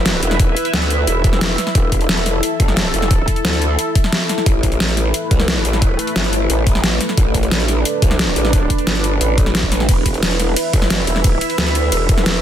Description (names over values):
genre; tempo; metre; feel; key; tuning
dark technical drum and bass; 177 BPM; 4/4; straight; E minor; A4 = 440 Hz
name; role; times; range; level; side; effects
sweeping resonant pad; sustained chords; 0.0-12.4 s; A3 to E5; -21 LUFS; equal; chorus, sidechain pumping
growl bass; bass; 0.0-12.4 s; E1 to D2; -18 LUFS; equal; chorus
dubstep drum kit; drums; 0.1-12.3 s; hi-hat, ride cymbal, snare drum; -19 LUFS; equal; overdrive, small room reverb
electronic kick drum; drums; 0.4-12.2 s; none; -15 LUFS; equal; small room reverb
room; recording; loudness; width
light reverb; dense, heavily limited modern master; -14 LUFS; side -10 dB against mid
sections
0.0-12.4 A section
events
none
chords
0.0 Em; 4.5 Am; 9.9 Em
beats
0.06 | 0.40 0.73 1.07 1.41 | 1.75 2.09 2.43 2.77 | 3.11 3.45 3.79 4.12 | 4.46 4.80 5.14 5.48 | 5.82 6.16 6.50 6.84 | 7.17 7.51 7.85 8.19 | 8.53 8.87 9.21 9.55 | 9.89 10.23 10.56 10.90 | 11.24 11.58 11.92 12.26